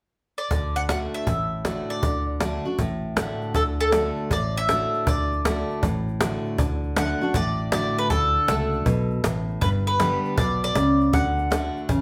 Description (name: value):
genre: honky-tonk and classic country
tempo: 158 BPM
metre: 4/4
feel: swing 66% on 8ths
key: D major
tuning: A4 = 438 Hz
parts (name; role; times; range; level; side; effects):
- mandolin; melody; 0.4-11.9 s; A4 to F#5; -28 LUFS; equal; none
- picked steel-string acoustic guitar; accompaniment; 0.5-12.0 s; G2 to G4; -29 LUFS; equal; none
- vintage muted fingered electric bass; bass; 0.5-12.0 s; G1 to D2; -30 LUFS; equal; none
- cajon; drums; 0.5-12.0 s; none; -30 LUFS; equal; none
room: wet studio reverb, RT60 0.8 s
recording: heard from further back in the room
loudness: -24 LUFS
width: mono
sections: 0.5-3.6 A section; 3.6-12.0 B section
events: none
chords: 0.0 N.C.; 0.5 D; 9.6 G; 11.1 D